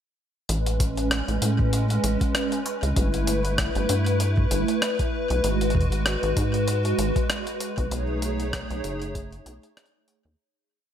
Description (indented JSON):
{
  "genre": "IDM",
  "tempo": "97 BPM",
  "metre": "4/4",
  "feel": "swing 56% on 16ths",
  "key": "A lydian",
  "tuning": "A4 = 440 Hz",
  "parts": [
    { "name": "hollow soft pad", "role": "sustained chords", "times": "0.5-10.4 s", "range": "G#3 to C#5", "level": "-26 LUFS", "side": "equal", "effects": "ensemble chorus" },
    { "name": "rubbery square bass", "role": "bass", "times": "0.5-10.4 s", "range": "F#1 to A2", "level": "-25 LUFS", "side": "equal", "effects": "none" },
    { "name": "jungle sampler-style drum kit", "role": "drums", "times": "0.5-10.2 s", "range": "hi-hat, rim click", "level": "-30 LUFS", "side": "left 1 dB", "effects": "overdrive" },
    { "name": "electronic kick drum", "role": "drums", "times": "0.8-9.3 s", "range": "none", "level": "-26 LUFS", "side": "equal", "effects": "overdrive" }
  ],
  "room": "light reverb, digital ambience",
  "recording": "none",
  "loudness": "-22 LUFS",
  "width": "side -9 dB against mid",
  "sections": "0.5-10.4 groove",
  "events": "fade-out 7.1-10.4",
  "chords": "0.5 Amaj9; 3.0 G69; 5.4 G#m7; 7.9 B13",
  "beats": "| 0.49 1.11 1.73 2.35 | 2.96 3.58 4.20 4.82 | 5.44 6.06 6.68 7.29 | 7.91 8.53 9.15 9.77"
}